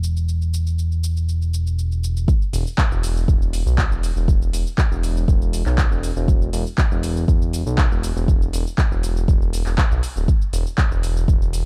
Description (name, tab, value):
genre	afro house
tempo	120 BPM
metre	4/4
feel	straight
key	unclear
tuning	A4 = 440 Hz
part	smooth synth bass	bass	0.0-11.6 s	D1 to B1	-23 LUFS	equal	sidechain pumping
part	deep house drum kit	drums	0.0-11.6 s	cabasa, handclaps, hi-hat	-31 LUFS	equal	overdrive
part	electronic kick drum	drums	2.3-11.4 s	none	-20 LUFS	equal	none
room	little or no reverb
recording	dark, warm production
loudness	-20 LUFS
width	mono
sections	0.0-2.3 A section; 2.3-11.7 B section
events	drop 2.3-11.7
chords	none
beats	| 0.28 0.78 1.28 1.78 | 2.28 2.78 3.28 3.78 | 4.28 4.78 5.28 5.78 | 6.28 6.78 7.28 7.78 | 8.28 8.78 9.28 9.78 | 10.28 10.78 11.28